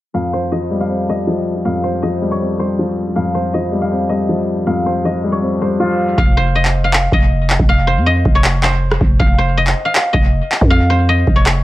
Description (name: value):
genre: hip hop, trap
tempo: 159 BPM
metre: 4/4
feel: half-time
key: unclear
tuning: A4 = 444 Hz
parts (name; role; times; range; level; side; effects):
- guzheng; melody; 0.1-11.6 s; F4 to F5; -19 LUFS; equal; low-pass filter, analog delay
- felt-muted upright piano; accompaniment; 0.1-6.2 s; F2 to C4; -17 LUFS; left 2 dB; low-pass filter, analog delay
- growling 808-style bass; bass; 6.2-11.6 s; F1 to F2; -15 LUFS; equal; none
- booming analog drum machine; drums; 6.2-11.5 s; handclaps, kick drum, rim click; -14 LUFS; equal; none
room: studio ambience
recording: echo-heavy mix, low-pass filter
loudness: -13 LUFS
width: side -16 dB against mid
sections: 0.1-6.2 A section; 6.2-11.6 B section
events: filter sweep 0.1-6.2; hi-hats muted 6.2-11.6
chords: 0.1 Fsus2; 6.2 F5